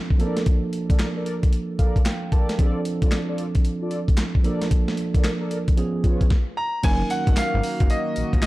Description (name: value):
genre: R&B, new jack swing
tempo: 113 BPM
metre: 4/4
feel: swing 64% on 16ths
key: unclear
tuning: A4 = 440 Hz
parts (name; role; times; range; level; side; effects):
- tine electric piano; accompaniment; 0.0-8.5 s; F3 to A5; -27 LUFS; right 3 dB; none
- dusty soul sampler-style drum kit; drums; 0.1-8.5 s; crash cymbal, handclaps, hi-hat, kick drum, snare drum, tambourine; -20 LUFS; equal; none
- mellow synth brass; stabs; 0.2-6.3 s; F4 to D5; -33 LUFS; left 1 dB; chorus, digital delay
- clear concert grand piano; melody; 6.6-8.5 s; D#5 to Bb5; -25 LUFS; equal; none
- chorused pulse-width pad; sustained chords; 6.8-8.5 s; D#3 to F#4; -30 LUFS; equal; none
- fat analog bass; bass; 6.8-8.4 s; F#1 to A#1; -25 LUFS; equal; none
room: digital ambience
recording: dark, warm production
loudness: -20 LUFS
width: side -18 dB against mid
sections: 0.0-6.8 A section; 6.8-8.5 B section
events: tine electric piano fill 1.5-2.6; stop 6.3-6.8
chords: 0.2 Bbmaj7; 2.6 F6; 4.4 Bbmaj7; 5.8 Db7; 6.8 F#6